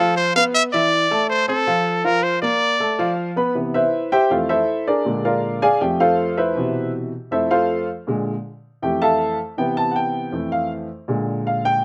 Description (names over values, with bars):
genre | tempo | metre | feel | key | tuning
latin | 159 BPM | 4/4 | straight | unclear | A4 = 439 Hz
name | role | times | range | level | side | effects
bright trumpet | melody | 0.0-3.1 s | A4 to F5 | -20 LUFS | equal | none
warm grand piano | accompaniment | 0.0-11.8 s | F2 to C6 | -21 LUFS | equal | slapback echo
room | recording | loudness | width
little or no reverb | recorded outdoors, with no room sound | -20 LUFS | mono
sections
0.0-3.6 A section; 3.6-11.8 B section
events
grand piano solo 3.6-11.8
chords
0.0 F; 0.5 E7sus4; 1.3 F; 2.0 Bb; 2.8 F; 3.6 Cmaj7; 4.3 Fmaj7; 5.1 Bb7; 5.8 Fmaj7; 6.6 Cmaj7; 7.3 Fmaj7; 8.1 Bb7; 8.8 Fmaj7; 9.6 Cmaj7; 10.3 Fmaj7; 11.1 Bb7